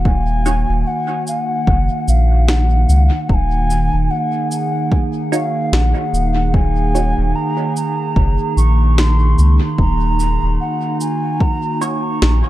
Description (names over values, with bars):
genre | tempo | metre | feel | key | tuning
ambient dub | 74 BPM | 4/4 | swing 58% on 16ths | Eb minor | A4 = 436 Hz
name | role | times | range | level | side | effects
warbly tape-like pad | sustained chords | 0.0-12.5 s | Eb3 to Ab4 | -21 LUFS | right 2 dB | chorus, built-in reverb
round analog bass | bass | 0.0-12.4 s | Eb1 to Db2 | -14 LUFS | equal | none
mellow hollow wooden flute | melody | 0.1-12.5 s | F5 to Db6 | -22 LUFS | equal | dub echo
electronic kick drum | drums | 0.1-11.6 s | none | -16 LUFS | equal | none
filtered dub chord stab | stabs | 0.5-12.0 s | Eb4 to Db5 | -26 LUFS | right 2 dB | phaser, lush chorus, dub echo
electronic cabasa and snare drum | drums | 0.5-12.4 s | none | -23 LUFS | equal | dub echo
room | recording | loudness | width
little or no reverb | echo-heavy mix | -14 LUFS | side -15 dB against mid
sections
0.0-12.5 A section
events
none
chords
0.0 Ebm7